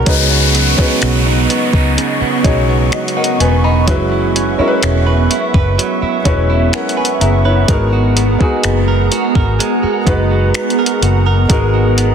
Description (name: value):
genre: contemporary R&B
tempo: 63 BPM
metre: 4/4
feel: straight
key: unclear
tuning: A4 = 440 Hz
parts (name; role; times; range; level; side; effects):
- warm concert grand piano; accompaniment; 0.0-12.1 s; G#3 to B5; -18 LUFS; left 1 dB; none
- hollow soft pad; sustained chords; 0.0-12.1 s; B3 to C#6; -19 LUFS; right 1 dB; ensemble chorus, sidechain pumping
- direct-recorded clean electric guitar; arpeggios; 0.0-12.1 s; C#3 to B4; -20 LUFS; right 10 dB; ping-pong delay
- vintage muted fingered electric bass; bass; 0.0-12.1 s; E1 to C#2; -14 LUFS; equal; none
- gated 80s digital drum machine; drums; 0.1-12.1 s; finger snaps, hi-hat, kick drum; -16 LUFS; equal; soft clipping on snare
- downlifter; sound effects; 0.1-7.7 s; none; -20 LUFS; left 2 dB; none
room: light reverb, digital ambience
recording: dense, heavily limited modern master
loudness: -11 LUFS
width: side -7 dB against mid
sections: 0.1-12.1 A section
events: grand piano fill 5.8-7.7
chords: 0.1 C#9sus4; 7.7 G#m9